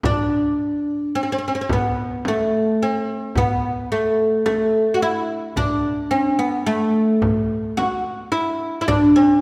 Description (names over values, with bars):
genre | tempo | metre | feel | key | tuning
Arabic maqam ensemble | 108 BPM (eighths) | 10/8 | straight | A maqam rast | A4 = 440 Hz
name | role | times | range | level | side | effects
darbuka | percussion | 0.0-9.1 s | none | -30 LUFS | equal | none
frame drum | percussion | 0.0-9.1 s | none | -30 LUFS | equal | none
oud | melody | 0.1-9.4 s | A3 to F#4 | -21 LUFS | equal | none
room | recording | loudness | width
wet scoring stage reverb, RT60 1.8 s | recorded in a church or concert hall | -20 LUFS | mono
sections
0.0-9.4 A section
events
none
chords
none